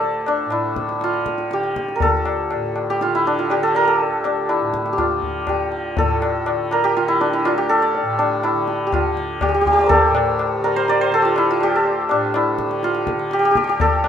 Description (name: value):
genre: indian classical, Hindustani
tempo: 122 BPM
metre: 4/4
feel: straight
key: D raga darbari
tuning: A4 = 440 Hz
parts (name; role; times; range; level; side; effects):
- santur; melody; 0.0-14.1 s; D4 to C6; -17 LUFS; right 1 dB; none
- tanpura; drone; 0.0-14.1 s; D2 to D3; -29 LUFS; equal; none
- tabla; percussion; 0.0-14.1 s; none; -24 LUFS; left 5 dB; none
room: light reverb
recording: minimal, uncompressed stereo recording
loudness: -16 LUFS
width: side -8 dB against mid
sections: 0.0-6.0 A section; 6.0-14.1 B section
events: speeding up 0.0-14.1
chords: none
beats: | 0.01 0.52 1.01 1.51 | 2.01 2.51 3.01 3.50 | 4.00 4.49 4.99 5.48 | 5.98 6.47 6.96 7.45 | 7.95 8.44 8.93 9.42 | 9.91 10.39 10.88 11.37 | 11.86 12.34 12.83 13.31 | 13.80